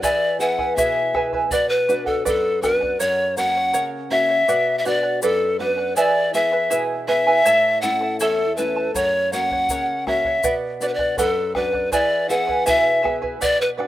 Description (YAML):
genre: andean folk, Andean ensemble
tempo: 81 BPM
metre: 2/4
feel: straight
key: unclear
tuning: A4 = 440 Hz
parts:
  - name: breathy bright pan flute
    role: melody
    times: 0.0-13.7 s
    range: A4 to F#5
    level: -19 LUFS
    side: left 1 dB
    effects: none
  - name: charango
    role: accompaniment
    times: 0.0-13.9 s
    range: E4 to A5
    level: -24 LUFS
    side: right 4 dB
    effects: none
  - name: nylon-string guitar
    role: accompaniment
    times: 0.0-13.9 s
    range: E2 to G#4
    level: -29 LUFS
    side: left 4 dB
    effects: none
  - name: bombo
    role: percussion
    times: 0.0-3.0, 8.9-13.9 s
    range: none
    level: -34 LUFS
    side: left 1 dB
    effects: none
  - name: tube shaker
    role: percussion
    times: 0.0-13.6 s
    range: none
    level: -31 LUFS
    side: left 6 dB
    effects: none
room: small room ambience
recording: rough home demo mix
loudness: -17 LUFS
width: side -14 dB against mid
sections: 0.0-3.0 A section; 3.0-13.9 A section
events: none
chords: 0.0 E; 1.5 Bm; 3.0 F#; 4.5 Bm; 6.0 E; 7.5 A; 8.9 F#; 10.4 Bm; 11.9 E